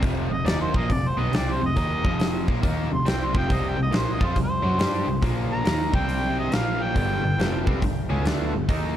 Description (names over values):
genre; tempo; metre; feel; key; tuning
blues rock power trio and southern rock; 139 BPM; 4/4; swing 65% on 8ths; unclear; A4 = 440 Hz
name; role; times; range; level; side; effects
cranked stack guitar; riff; 0.0-9.0 s; F2 to G4; -27 LUFS; left 1 dB; overdrive
rich double bass; bass; 0.0-8.9 s; F1 to G2; -27 LUFS; equal; none
huge arena drum kit; drums; 0.0-8.8 s; hi-hat, kick drum, snare drum; -26 LUFS; equal; none
mellow harmonica; melody; 0.3-7.7 s; C5 to C6; -29 LUFS; equal; overdrive
overdriven tonewheel organ; sustained chords; 6.9-8.9 s; B3 to A4; -35 LUFS; right 4 dB; slow rotary speaker
room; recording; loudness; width
little or no reverb; none; -21 LUFS; side -11 dB against mid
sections
0.0-9.0 A section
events
none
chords
0.0 F5; 3.5 C5; 5.2 Bb5; 5.7 C5; 6.5 Bb5; 7.0 G7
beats
| 0.02 0.46 0.89 1.33 | 1.76 2.20 2.63 3.06 | 3.50 3.93 4.36 4.80 | 5.23 5.66 6.09 6.52 | 6.96 7.39 7.82 8.25 | 8.68